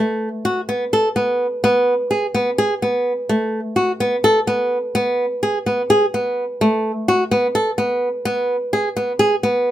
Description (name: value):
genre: contemporary instrumental, contemporary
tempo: 254 BPM (eighths)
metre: 7/8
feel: straight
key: unclear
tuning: A4 = 438 Hz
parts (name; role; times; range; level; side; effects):
- flamenco guitar; solo; 0.0-9.7 s; A3 to A4; -16 LUFS; equal; none
room: light reverb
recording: close, detailed microphones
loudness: -16 LUFS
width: side -12 dB against mid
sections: 0.0-9.7 A section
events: none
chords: none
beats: 0.22 0.46 0.69 0.93 1.17 1.40 | 1.64 1.88 2.11 2.35 2.59 2.82 3.06 | 3.30 3.53 3.77 4.01 4.24 4.48 4.72 | 4.95 5.19 5.42 5.66 5.90 6.13 6.37 | 6.61 6.84 7.08 7.32 7.55 7.79 8.03 | 8.26 8.50 8.73 8.97 9.21 9.44 9.68